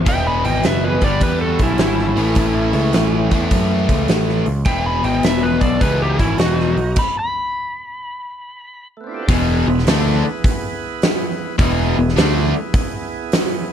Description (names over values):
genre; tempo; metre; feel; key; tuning
blues rock power trio and southern rock; 104 BPM; 4/4; swing 66% on 8ths; E mixolydian from 9.3 s; A4 = 440 Hz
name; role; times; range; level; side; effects
growling picked electric bass; bass; 0.0-12.5 s; E1 to F#2; -20 LUFS; equal; overdrive
overdriven slide guitar; melody; 0.1-8.9 s; E4 to B5; -22 LUFS; equal; none
biting lead guitar; second line; 0.1-7.0 s; C#4 to G#5; -29 LUFS; right 8 dB; overdrive
biting overdriven guitar; riff; 0.1-12.5 s; E2 to D4; -19 LUFS; left 2 dB; none
huge arena drum kit; drums; 0.1-13.5 s; crash cymbal, hi-hat, kick drum, snare drum; -19 LUFS; right 1 dB; none
overdriven tonewheel organ; sustained chords; 9.0-13.7 s; A3 to D5; -28 LUFS; right 4 dB; slow rotary speaker
room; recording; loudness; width
little or no reverb; none; -15 LUFS; side -9 dB against mid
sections
0.0-9.3 A section; 9.3-13.7 B section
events
stop 7.0-9.3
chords
0.1 E; 0.9 G; 2.1 A; 4.7 E; 6.7 N.C.; 9.3 E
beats
| 0.06 0.64 1.21 1.79 | 2.37 2.94 3.52 4.09 | 4.67 5.25 5.82 6.40 | 6.98 7.55 8.13 8.71 | 9.28 9.86 10.44 11.01 | 11.59 12.16 12.74 13.31